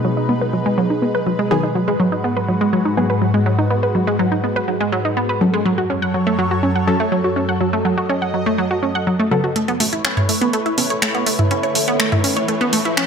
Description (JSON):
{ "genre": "melodic techno", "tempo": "123 BPM", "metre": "4/4", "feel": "straight", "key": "unclear", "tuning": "A4 = 440 Hz", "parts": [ { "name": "lush unison pad", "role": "sustained chords", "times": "0.0-13.1 s", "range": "F#2 to D#5", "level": "-21 LUFS", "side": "left 1 dB", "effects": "chorus, phaser" }, { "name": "wide unison pluck", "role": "arpeggios", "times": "0.0-13.1 s", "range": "F#3 to F#5", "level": "-18 LUFS", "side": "right 1 dB", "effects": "tape echo" }, { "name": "filtered dub chord stab", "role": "stabs", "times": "1.5-10.9 s", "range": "C#3 to A4", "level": "-23 LUFS", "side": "left 3 dB", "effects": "phaser, tape echo" }, { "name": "house drum kit", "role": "drums", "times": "9.6-13.1 s", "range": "finger snaps, hi-hat, toms", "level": "-19 LUFS", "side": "equal", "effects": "overdrive, low-pass filter on hats, low-pass filter on snare, low-pass filter on toms, low-pass filter on room" }, { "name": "riser", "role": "sound effects", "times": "10.6-13.1 s", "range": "none", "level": "-31 LUFS", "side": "left 1 dB", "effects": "none" }, { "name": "dark detuned saw bass", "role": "bass", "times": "9.8-12.9 s", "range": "A1", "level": "-36 LUFS", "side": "equal", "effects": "none" } ], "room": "moderate digital room reverb, RT60 1.0 s, digital ambience", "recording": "none", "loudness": "-16 LUFS", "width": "side -6 dB against mid", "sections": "0.0-9.6 A section; 9.6-13.1 B section", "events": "filter sweep on synth arpeggio sound 0.0-9.6; build-up 9.6-13.1; filter sweep on synth stab 9.6-13.1; riser 10.6-13.1", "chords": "0.0 B6; 1.8 G#m7; 5.7 F#m; 9.6 Aadd9" }